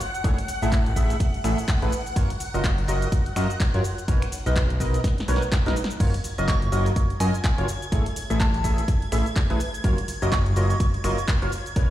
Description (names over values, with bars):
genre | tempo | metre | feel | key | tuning
piano house | 125 BPM | 4/4 | swing 58% on 16ths | unclear | A4 = 445 Hz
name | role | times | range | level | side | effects
string machine, violins | sustained chords | 0.0-11.9 s | F#5 to G#6 | -36 LUFS | left 1 dB | ensemble chorus, sidechain pumping
punchy analog drum machine | drums | 0.0-11.9 s | crash cymbal, finger snaps, handclaps, hi-hat, shaker, snare drum | -33 LUFS | equal | overdrive, small room ambience
percussive organ stab | riff | 0.2-11.9 s | B2 to E5 | -28 LUFS | equal | ensemble chorus, sidechain pumping, digital delay
fat analog bass | bass | 0.2-11.9 s | F#1 to F#2 | -24 LUFS | equal | sidechain pumping
electronic kick drum | drums | 0.2-11.9 s | none | -23 LUFS | equal | small room ambience
soft synth bell | melody | 6.5-11.2 s | G#5 to C#6 | -32 LUFS | right 2 dB | chorus, phaser, digital delay
room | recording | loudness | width
light reverb | played on a big sound system in a bare room, stone room reverb | -21 LUFS | side -13 dB against mid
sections
0.0-11.9 A section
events
drum fill 5.0-6.0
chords
0.0 Amaj7; 2.2 F#maj7; 3.8 Bmaj9; 6.0 F#maj7; 7.7 Amaj7; 9.8 F#maj7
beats
| 0.24 0.72 1.20 1.68 | 2.16 2.64 3.12 3.60 | 4.08 4.56 5.04 5.52 | 6.00 6.48 6.96 7.44 | 7.92 8.40 8.88 9.36 | 9.84 10.32 10.80 11.28 | 11.76